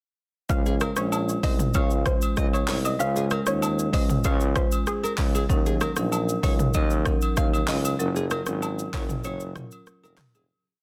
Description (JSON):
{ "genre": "afrobeats", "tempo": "96 BPM", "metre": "4/4", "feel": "straight", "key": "Db major", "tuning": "A4 = 436 Hz", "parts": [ { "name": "soft round pluck", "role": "melody", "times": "0.5-5.3 s", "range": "Ab4 to F5", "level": "-34 LUFS", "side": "equal", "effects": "chorus, delay" }, { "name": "marimba with medium mallets", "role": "accompaniment", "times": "0.5-9.8 s", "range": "Gb3 to C5", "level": "-33 LUFS", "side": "equal", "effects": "none" }, { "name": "warm tuba", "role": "bass", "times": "0.5-10.5 s", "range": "F1 to Eb2", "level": "-30 LUFS", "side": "equal", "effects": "none" }, { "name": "deep house drum kit", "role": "drums", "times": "0.5-10.5 s", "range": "handclaps, hi-hat, kick drum, rim click, shaker, toms", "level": "-27 LUFS", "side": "equal", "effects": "soft clipping on snare" }, { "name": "nylon-string guitar", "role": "riff", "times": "0.7-10.4 s", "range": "Ab4 to F5", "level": "-37 LUFS", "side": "equal", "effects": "delay" }, { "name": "agogo bells and woodblock", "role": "percussion", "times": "0.8-10.5 s", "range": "none", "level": "-36 LUFS", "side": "equal", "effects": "none" } ], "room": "small room ambience", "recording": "dense, heavily limited modern master", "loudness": "-24 LUFS", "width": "mono", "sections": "0.5-10.5 chorus", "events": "fade-out 8.0-10.5; break 9.2-10.5", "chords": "0.5 Dbmaj7; 5.5 Ebm7; 8.0 Gbmaj7", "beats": "| 0.50 1.12 1.75 2.37 | 3.00 3.62 4.25 4.87 | 5.50 6.12 6.75 7.37 | 8.00 8.62 9.25 9.87" }